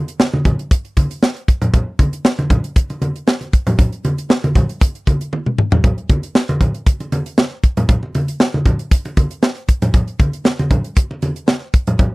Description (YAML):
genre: funk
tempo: 117 BPM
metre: 4/4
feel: straight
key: none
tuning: none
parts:
  - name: tight funk drum kit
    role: drums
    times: 0.1-12.1 s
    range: hi-hat, kick drum, snare drum, toms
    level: -13 LUFS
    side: equal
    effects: none
  - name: congas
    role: percussion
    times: 0.2-12.1 s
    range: none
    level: -18 LUFS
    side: equal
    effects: none
room: light reverb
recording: dry, close 1970s-style studio recording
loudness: -14 LUFS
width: side -23 dB against mid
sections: 0.0-12.1 A section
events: drum fill 5.3-5.8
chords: none